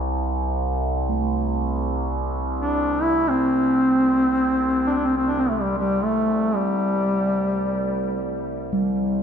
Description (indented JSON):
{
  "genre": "world meditative, free-time meditation music",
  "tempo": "free time",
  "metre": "none",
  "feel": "none",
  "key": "unclear",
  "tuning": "A4 = 440 Hz",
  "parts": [
    { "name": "overtone-sweeping drone", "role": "drone", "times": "0.0-9.2 s", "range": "C2", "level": "-26 LUFS", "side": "right 1 dB", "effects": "chorus, built-in reverb" },
    { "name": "bronze singing bowl", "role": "texture", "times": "0.0-9.2 s", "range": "G3 to C4", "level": "-31 LUFS", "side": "right 3 dB", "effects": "none" },
    { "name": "mellow duduk", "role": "melody", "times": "2.6-8.2 s", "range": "G3 to E4", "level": "-20 LUFS", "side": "left 1 dB", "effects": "diffuse ambient delay" }
  ],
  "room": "wet echo chamber reverb, RT60 2.5 s",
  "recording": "none",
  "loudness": "-20 LUFS",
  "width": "side -7 dB against mid",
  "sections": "0.0-9.2 A section",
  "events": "none",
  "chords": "none"
}